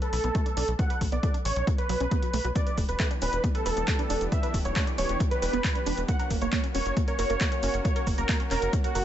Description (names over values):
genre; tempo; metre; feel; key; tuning
uplifting trance; 136 BPM; 4/4; straight; B minor; A4 = 440 Hz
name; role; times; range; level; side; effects
dense compressed supersaw; melody; 0.0-9.0 s; F#4 to F#5; -31 LUFS; right 1 dB; sidechain pumping, low-pass filter, digital delay
tight sequenced synth; arpeggios; 0.0-9.0 s; F#3 to B4; -34 LUFS; right 4 dB; chorus, phaser, sidechain pumping, digital delay
punchy analog drum machine; drums; 0.0-9.0 s; handclaps, hi-hat, shaker; -35 LUFS; equal; overdrive, sidechain pumping on hats, sidechain pumping on perc
tight sequencer bass; bass; 0.1-9.0 s; D1 to B1; -31 LUFS; equal; tube saturation, sidechain pumping
electronic kick drum; drums; 0.3-8.8 s; none; -27 LUFS; equal; overdrive
lush unison pad; sustained chords; 2.6-9.0 s; E3 to G4; -37 LUFS; equal; chorus, sidechain pumping
room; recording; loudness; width
digital ambience; nothing above 7.9 kHz; -24 LUFS; side -11 dB against mid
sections
0.0-9.0 A section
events
none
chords
0.0 Bm7; 2.6 Em7; 6.1 F#